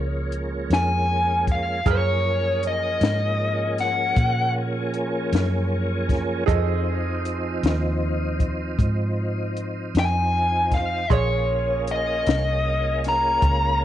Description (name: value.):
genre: slow blues.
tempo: 52 BPM (dotted quarters).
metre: 12/8.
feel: straight.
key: Bb minor.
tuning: A4 = 440 Hz.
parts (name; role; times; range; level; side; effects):
bright upright piano; accompaniment; 0.0-13.8 s; Ab4 to F6; -30 LUFS; right 14 dB; none.
tonewheel organ; sustained chords; 0.0-13.8 s; F3 to Ab4; -28 LUFS; equal; slow rotary speaker, chorus vibrato.
vintage muted fingered electric bass; bass; 0.0-13.8 s; Bb1 to Bb2; -25 LUFS; right 1 dB; none.
compact cocktail drum kit; drums; 0.3-13.6 s; hi-hat, kick drum, snare drum; -24 LUFS; left 2 dB; none.
dark smooth lead guitar; melody; 0.7-13.8 s; Db5 to Bb5; -23 LUFS; left 2 dB; overdrive.
room: light reverb, studio ambience.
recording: 1960s-style stereo, nothing above 10.5 kHz.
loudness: -20 LUFS.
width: side -12 dB against mid.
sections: 0.0-13.8 A section.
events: none.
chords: 0.0 Bbm9; 1.9 Gbmaj7; 6.5 F7#9; 11.1 Bbm9.